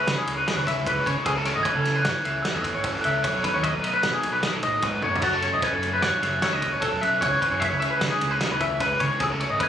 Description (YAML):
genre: math rock and midwest emo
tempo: 151 BPM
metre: 5/4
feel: straight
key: unclear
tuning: A4 = 441 Hz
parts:
  - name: glockenspiel with rubber mallets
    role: melody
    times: 0.0-9.7 s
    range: B5 to B6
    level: -28 LUFS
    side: right 2 dB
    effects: tape echo
  - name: twangy electric guitar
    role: arpeggios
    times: 0.0-9.7 s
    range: F#4 to E5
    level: -26 LUFS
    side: left 3 dB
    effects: wide subtle chorus
  - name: overdriven electric guitar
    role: riff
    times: 0.0-9.7 s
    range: F#2 to D#4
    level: -31 LUFS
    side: right 2 dB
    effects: none
  - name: picked electric bass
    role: bass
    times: 0.1-9.6 s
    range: E1 to C#3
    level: -31 LUFS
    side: equal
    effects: none
  - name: loose indie drum kit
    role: drums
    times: 0.1-9.7 s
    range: crash cymbal, kick drum, ride cymbal, snare drum, toms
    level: -28 LUFS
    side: equal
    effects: none
room: little or no reverb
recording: recorded on a phone in the room, studio ambience, compression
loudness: -21 LUFS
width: side -9 dB against mid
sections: 0.0-9.7 A section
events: drum fill 5.0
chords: 0.0 C#m7; 1.3 Amaj7; 3.2 B7; 5.2 F#m7; 7.2 C#m7